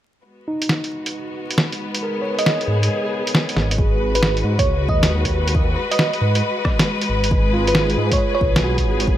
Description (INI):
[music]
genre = future garage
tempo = 136 BPM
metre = 4/4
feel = swing 66% on 16ths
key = G# dorian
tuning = A4 = 440 Hz
[part]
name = rich studio string section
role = sustained chords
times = 0.2-9.2 s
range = G#3 to B4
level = -24 LUFS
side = left 2 dB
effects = sidechain pumping
[part]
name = overdriven tine electric piano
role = accompaniment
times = 0.5-9.2 s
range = D#4 to C#5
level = -28 LUFS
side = right 3 dB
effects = sidechain pumping, low-pass filter, tape echo
[part]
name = lo-fi sampler-style drum kit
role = drums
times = 0.6-9.1 s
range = hi-hat, rim click, snare drum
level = -20 LUFS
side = equal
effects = none
[part]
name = bell-like FM electric piano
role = melody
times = 2.4-8.6 s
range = B4 to D#5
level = -24 LUFS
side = right 2 dB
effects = chorus, tremolo, tape echo
[part]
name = swelling detuned saw bass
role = bass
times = 2.7-9.2 s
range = G#1 to G#2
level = -20 LUFS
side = equal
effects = tube saturation, sidechain pumping
[part]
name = electronic kick drum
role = drums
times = 3.8-9.2 s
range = none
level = -20 LUFS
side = equal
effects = none
[sound]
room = light reverb, digital ambience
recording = vinyl crackle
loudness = -17 LUFS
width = side -12 dB against mid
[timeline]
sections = 0.3-3.8 A section; 3.8-9.2 B section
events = fade-in on string section 0.3-3.8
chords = 0.3 G#m7